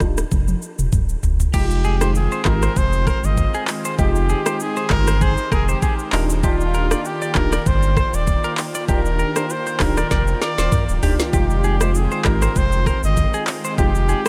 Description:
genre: afrobeats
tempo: 98 BPM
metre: 4/4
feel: swing 55% on 16ths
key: unclear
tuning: A4 = 444 Hz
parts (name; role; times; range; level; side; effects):
- tine electric piano; accompaniment; 0.0-14.3 s; Ab3 to G4; -30 LUFS; equal; ensemble chorus
- warm sub bass; bass; 0.0-14.1 s; D1 to Ab1; -22 LUFS; equal; none
- afro-pop drum kit; drums; 0.0-14.3 s; crash cymbal, handclaps, hi-hat, kick drum, rim click, shaker, snare drum, toms; -23 LUFS; equal; overdrive
- airy breathy pad; sustained chords; 1.5-14.3 s; Eb3 to G5; -31 LUFS; equal; chorus
- semi-hollow electric guitar; riff; 1.5-14.3 s; G4 to D5; -30 LUFS; equal; subtle chorus, tape echo
- warm trumpet; melody; 1.6-14.3 s; F4 to Eb5; -27 LUFS; equal; none
room: light reverb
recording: none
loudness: -19 LUFS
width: mono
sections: 0.0-1.5 A section; 1.5-14.3 B section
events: drum fill 0.3-1.5, 10.1-11.3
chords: 0.0 Ebmaj7sus2; 1.5 Fm9; 6.1 Ebmaj9; 11.3 Fm9

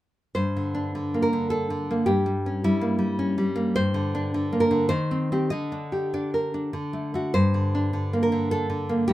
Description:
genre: romantic piece for solo classical guitar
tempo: 95-110 BPM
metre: 3/4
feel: rubato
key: G minor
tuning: A4 = 438 Hz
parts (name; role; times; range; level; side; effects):
- nylon-string guitar; solo; 0.3-9.1 s; G2 to Eb5; -22 LUFS; equal; none
room: light reverb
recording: minimal, uncompressed stereo recording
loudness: -22 LUFS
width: side -15 dB against mid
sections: 0.4-9.1 A section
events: none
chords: 0.4 Gm; 2.1 Gdim7; 3.7 Gm; 4.9 Cm/Eb; 5.5 Gm/D; 6.7 D; 7.3 Gm

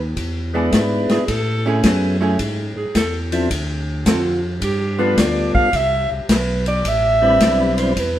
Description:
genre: soul jazz organ trio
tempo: 108 BPM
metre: 4/4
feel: swing 67% on 8ths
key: unclear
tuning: A4 = 444 Hz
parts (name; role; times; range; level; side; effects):
- tonewheel organ; bass; 0.0-8.2 s; A1 to A2; -22 LUFS; equal; overdrive, stopped rotary speaker
- warm soul drum kit; drums; 0.2-8.1 s; hi-hat, kick drum, ride cymbal, snare drum; -22 LUFS; left 1 dB; none
- percussive tonewheel organ; melody; 0.5-7.9 s; F3 to B4; -20 LUFS; left 2 dB; slow rotary speaker
- archtop guitar, miked and amplified; accompaniment; 0.5-5.2 s; D3 to A4; -22 LUFS; right 2 dB; none
- clear alto saxophone; melody; 1.1-8.2 s; G4 to F5; -19 LUFS; right 2 dB; none
room: wet stone room reverb, RT60 1.3 s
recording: band playing live in one room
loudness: -16 LUFS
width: side -12 dB against mid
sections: 0.0-8.2 A section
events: alto saxophone solo 0.0-8.2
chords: 0.2 E7; 1.3 Amaj7; 3.5 Dm7; 4.6 G7; 5.7 Cmaj7

